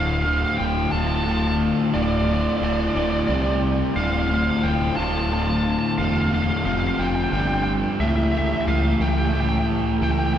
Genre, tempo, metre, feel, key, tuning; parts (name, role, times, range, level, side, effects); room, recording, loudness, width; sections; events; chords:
rock; 59 BPM (dotted quarters); 6/8; straight; D minor; A4 = 445 Hz
lead guitar through a small cranked amp; melody; 0.0-10.4 s; D5 to A5; -26 LUFS; right 1 dB; overdrive
muted studio string section; sustained chords; 0.0-10.4 s; C3 to G5; -35 LUFS; left 1 dB
cranked stack guitar; riff; 0.0-10.4 s; D2 to C4; -24 LUFS; right 1 dB; overdrive
overdriven semi-hollow guitar; riff; 0.0-10.4 s; D2 to C4; -26 LUFS; left 5 dB
growling fingered electric bass; bass; 0.0-10.4 s; D1 to C#2; -25 LUFS; equal; overdrive
wet cathedral reverb, RT60 6.3 s; recorded in a church or concert hall, nothing above 10.3 kHz; -19 LUFS; side -10 dB against mid
0.0-10.4 A section
0.0 Dm7; 3.3 C5; 4.0 Dm9; 6.7 F5; 7.3 G5; 8.0 A7/C#